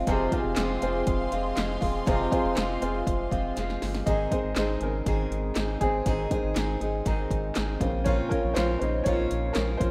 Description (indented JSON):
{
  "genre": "piano-driven pop",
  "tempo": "120 BPM",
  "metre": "4/4",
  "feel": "straight",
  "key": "F minor",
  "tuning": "A4 = 439 Hz",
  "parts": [
    { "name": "clear upright piano", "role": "accompaniment", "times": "0.0-9.9 s", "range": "C3 to F5", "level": "-32 LUFS", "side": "equal", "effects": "none" },
    { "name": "picked steel-string acoustic guitar", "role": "riff", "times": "0.0-9.9 s", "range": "F2 to Ab4", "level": "-33 LUFS", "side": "equal", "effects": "none" },
    { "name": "round analog bass", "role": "bass", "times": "0.0-9.9 s", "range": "E1 to Bb1", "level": "-34 LUFS", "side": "equal", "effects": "none" },
    { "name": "rich studio string section", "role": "sustained chords", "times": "0.1-4.0 s", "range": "Ab4 to C6", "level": "-38 LUFS", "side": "equal", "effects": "none" },
    { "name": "deep house drum kit", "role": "drums", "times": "0.1-9.9 s", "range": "handclaps, hi-hat, kick drum, snare drum", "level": "-33 LUFS", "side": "equal", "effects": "overdrive" }
  ],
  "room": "light reverb",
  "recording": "rough home demo mix",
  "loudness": "-27 LUFS",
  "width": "mono",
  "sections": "0.1-4.1 A section; 4.1-9.9 B section",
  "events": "upright piano fill 3.3-4.1; drum fill 3.6-4.1; upright piano solo 4.1-9.9",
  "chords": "0.1 Fm; 4.1 Ab; 7.8 Bbmadd9",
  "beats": "| 0.07 0.57 1.07 1.57 | 2.07 2.57 3.07 3.57 | 4.07 4.57 5.07 5.57 | 6.06 6.56 7.06 7.56 | 8.06 8.56 9.06 9.56"
}